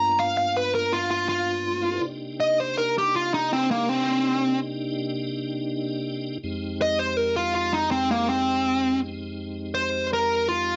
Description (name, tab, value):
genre	blues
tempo	55 BPM (dotted quarters)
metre	12/8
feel	straight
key	C minor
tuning	A4 = 441 Hz
part	smooth overdriven lead guitar	melody	0.0-10.8 s	Bb3 to A#5	-24 LUFS	equal	none
part	tonewheel organ	sustained chords	0.0-10.8 s	F2 to D5	-33 LUFS	equal	slow rotary speaker, overdrive, chorus vibrato
room	moderate studio reverb, RT60 0.6 s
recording	nothing above 7.9 kHz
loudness	-25 LUFS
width	mono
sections	0.0-2.0 A section; 2.0-10.8 B section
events	lead electric guitar solo 2.0-10.8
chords	0.0 G7#9; 2.0 Cm7; 6.4 Fm7